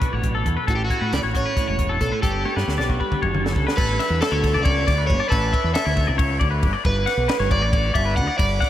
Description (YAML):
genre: math rock and midwest emo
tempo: 273 BPM (eighths)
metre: 7/8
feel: straight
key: unclear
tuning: A4 = 436 Hz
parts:
  - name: clean electric guitar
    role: accompaniment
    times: 0.0-5.3 s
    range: A2 to A4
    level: -32 LUFS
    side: right 6 dB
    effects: ensemble chorus
  - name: twangy electric guitar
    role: arpeggios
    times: 0.0-8.7 s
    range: F#4 to F#5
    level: -25 LUFS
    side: left 5 dB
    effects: analog chorus, analog delay
  - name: compact cocktail drum kit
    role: drums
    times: 0.0-8.7 s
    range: crash cymbal, hi-hat, kick drum, ride cymbal, snare drum, toms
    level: -24 LUFS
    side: equal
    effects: none
  - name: growling fingered electric bass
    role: bass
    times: 0.1-8.6 s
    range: E1 to A2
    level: -23 LUFS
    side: equal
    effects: overdrive
  - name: overdriven semi-hollow guitar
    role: melody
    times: 0.7-8.7 s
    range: F#4 to F#5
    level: -25 LUFS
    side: right 2 dB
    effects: analog delay
room: moderate huge ambient reverb, RT60 4.2 s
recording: dreamy mix soaked in reverb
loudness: -18 LUFS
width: side -12 dB against mid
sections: 0.0-3.8 A section; 3.8-8.7 B section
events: drum fill 2.5-3.8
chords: 0.0 Bm9; 0.7 F#m7/A (rootless); 2.2 Gmaj9; 3.8 A9sus4; 6.9 Gmaj9#11